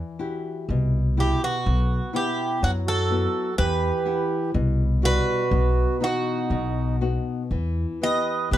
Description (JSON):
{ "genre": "fado-style ballad", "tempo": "62 BPM", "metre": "2/4", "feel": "rubato", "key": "E harmonic minor", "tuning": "A4 = 440 Hz", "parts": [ { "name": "nylon-string guitar", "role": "accompaniment", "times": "0.0-8.6 s", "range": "B2 to F#5", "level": "-29 LUFS", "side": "left 5 dB", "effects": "none" }, { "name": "upright bass", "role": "bass", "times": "0.7-8.6 s", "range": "B1 to F#2", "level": "-23 LUFS", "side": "equal", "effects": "none" }, { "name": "Greek bouzouki", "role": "melody", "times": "1.2-8.6 s", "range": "F#4 to D#5", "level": "-26 LUFS", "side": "right 1 dB", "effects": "none" }, { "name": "mellow accordion", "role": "second line", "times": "1.2-8.6 s", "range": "B3 to B4", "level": "-28 LUFS", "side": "right 6 dB", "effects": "none" } ], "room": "light reverb", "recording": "dark, warm production", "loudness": "-21 LUFS", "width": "side -12 dB against mid", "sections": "0.0-8.6 A section", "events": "none", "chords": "0.0 Emadd9; 1.7 Bsus4; 3.6 Emadd9; 5.5 Bsus4; 6.5 B; 7.5 Em", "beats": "0.69 | 1.66 2.63 | 3.59 4.55 | 5.52 6.51 | 7.51 8.52" }